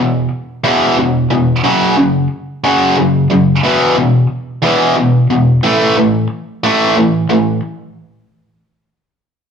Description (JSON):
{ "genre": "rock", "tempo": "60 BPM (dotted quarters)", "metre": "6/8", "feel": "straight", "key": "unclear", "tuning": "A4 = 440 Hz", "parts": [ { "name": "tight distorted guitar", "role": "solo", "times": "0.0-7.6 s", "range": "E2 to A3", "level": "-11 LUFS", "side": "equal", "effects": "distortion" } ], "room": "wet large studio reverb, RT60 1.2 s, digital ambience", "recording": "dark, warm production", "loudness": "-11 LUFS", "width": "side -7 dB against mid", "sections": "0.0-7.6 A section; 7.6-9.5 B section", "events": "none", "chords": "0.0 E5; 1.6 F#5; 3.6 E5; 5.6 A5; 7.6 N.C." }